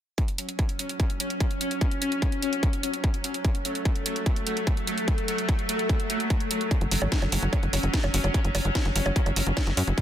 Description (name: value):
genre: psychedelic trance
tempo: 147 BPM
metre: 4/4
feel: straight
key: F# minor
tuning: A4 = 441 Hz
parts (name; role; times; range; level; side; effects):
- pulsing gated texture; sustained chords; 0.2-10.0 s; F#3 to F#4; -29 LUFS; left 1 dB; chorus, built-in reverb, sidechain pumping
- electronic kick drum; drums; 0.2-10.0 s; none; -25 LUFS; equal; distortion, overdrive
- techno drum kit; drums; 0.2-10.0 s; bongos, hi-hat, snare drum; -30 LUFS; right 2 dB; overdrive
- tight sequencer bass; bass; 6.8-9.9 s; F#1 to F#2; -26 LUFS; equal; none
room: light reverb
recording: dense, heavily limited modern master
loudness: -24 LUFS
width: side -11 dB against mid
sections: 0.2-10.0 A section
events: none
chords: 0.2 F#5